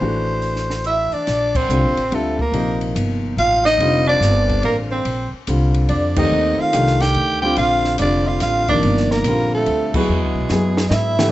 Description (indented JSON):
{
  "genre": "modal jazz",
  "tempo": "143 BPM",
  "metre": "3/4",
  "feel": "swing 66% on 8ths",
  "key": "Bb major",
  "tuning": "A4 = 440 Hz",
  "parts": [
    { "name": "growling soprano saxophone", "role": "melody", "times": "0.0-11.3 s", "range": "Ab4 to G5", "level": "-20 LUFS", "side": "equal", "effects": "none" },
    { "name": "warm upright piano", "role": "accompaniment", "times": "0.0-11.3 s", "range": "C3 to G#4", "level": "-22 LUFS", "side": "left 1 dB", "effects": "none" },
    { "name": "upright bass", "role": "bass", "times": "0.0-11.3 s", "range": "F1 to G#2", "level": "-21 LUFS", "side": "equal", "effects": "none" },
    { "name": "compact cocktail drum kit", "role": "drums", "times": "0.4-11.3 s", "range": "crash cymbal, hi-hat, kick drum, ride cymbal, snare drum", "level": "-28 LUFS", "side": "equal", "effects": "none" },
    { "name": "breathy tenor saxophone", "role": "second line", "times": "0.9-11.3 s", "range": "Ab3 to G4", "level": "-24 LUFS", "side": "right 3 dB", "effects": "none" }
  ],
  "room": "moderate large studio reverb, RT60 1.3 s",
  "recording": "nothing above 8.0 kHz",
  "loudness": "-15 LUFS",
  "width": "side -15 dB against mid",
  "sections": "0.0-1.3 A section; 1.3-11.3 B section",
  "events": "band accent 1.5, 6.1, 9.9; drum fill 10.5-11.3",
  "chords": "0.0 D7sus2; 1.3 Bbmaj9; 6.3 Ebmaj9; 10.1 E9"
}